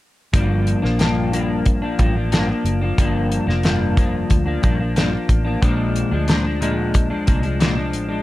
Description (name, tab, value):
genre	indie pop, bedroom pop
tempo	91 BPM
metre	4/4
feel	straight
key	unclear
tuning	A4 = 441 Hz
part	semi-hollow electric guitar	accompaniment	0.3-8.2 s	G2 to D4	-20 LUFS	left 1 dB	analog chorus, warbly pitch drift
part	vintage muted fingered electric bass	bass	0.3-8.2 s	F1 to D2	-23 LUFS	equal	none
part	damped 70s drum kit	drums	0.3-8.1 s	hi-hat, kick drum, snare drum	-18 LUFS	equal	none
room	moderate studio ambience, RT60 0.5 s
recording	dark, warm production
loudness	-16 LUFS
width	side -16 dB against mid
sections	0.3-8.2 A section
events	none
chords	0.3 Gm7; 5.6 Bb7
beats	| 0.34 1.00 1.66 2.32 | 2.98 3.64 4.30 4.96 | 5.62 6.28 6.94 7.61